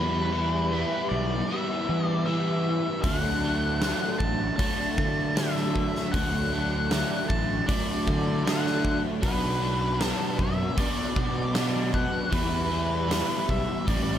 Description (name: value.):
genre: rock, shoegaze and dream pop.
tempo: 78 BPM.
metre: 4/4.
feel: straight.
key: D major.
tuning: A4 = 442 Hz.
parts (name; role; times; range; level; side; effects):
octave-fuzz lead guitar; melody; 0.0-14.2 s; B4 to A5; -31 LUFS; left 1 dB; distortion, analog delay.
crunchy overdriven guitar; riff; 0.0-14.2 s; A2 to E4; -28 LUFS; equal; ensemble chorus.
fuzz fingered electric bass; bass; 0.0-14.2 s; A1 to E3; -29 LUFS; right 1 dB; overdrive.
huge arena drum kit; drums; 3.0-14.1 s; hi-hat, kick drum, snare drum; -30 LUFS; equal; none.
room: light reverb, small room ambience.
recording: none.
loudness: -24 LUFS.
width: side -10 dB against mid.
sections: 0.0-14.2 A section.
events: none.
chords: 0.0 Em; 3.0 D; 9.2 Bm; 12.3 Em.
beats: 0.73 1.50 2.28 | 3.05 3.82 4.60 5.37 | 6.14 6.92 7.69 8.46 | 9.24 10.01 10.79 11.56 | 12.34 13.11 13.88.